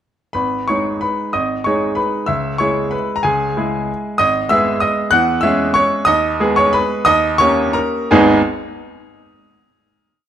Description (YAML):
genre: classical, piano waltz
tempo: 158-199 BPM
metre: 3/4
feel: rubato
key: G# minor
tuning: A4 = 440 Hz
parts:
  - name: bright baby grand piano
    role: solo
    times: 0.3-8.4 s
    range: G#1 to F#6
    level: -14 LUFS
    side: equal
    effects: none
room: light reverb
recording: close, detailed microphones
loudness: -14 LUFS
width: side -10 dB against mid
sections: 0.4-8.1 A section; 8.1-9.2 final chord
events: slowing down 5.6-8.1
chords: 0.4 G#m; 2.3 C#m; 4.2 G#m; 5.1 C#m/E; 6.1 G#m/D#; 7.1 D#7; 8.1 G#m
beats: | 0.35 0.68 1.01 | 1.33 1.65 1.98 | 2.29 2.60 2.93 | 3.25 3.57 3.89 | 4.21 4.51 4.82 | 5.13 5.44 5.77 | 6.09 6.42 6.75 | 7.08 7.40 7.76 | 8.12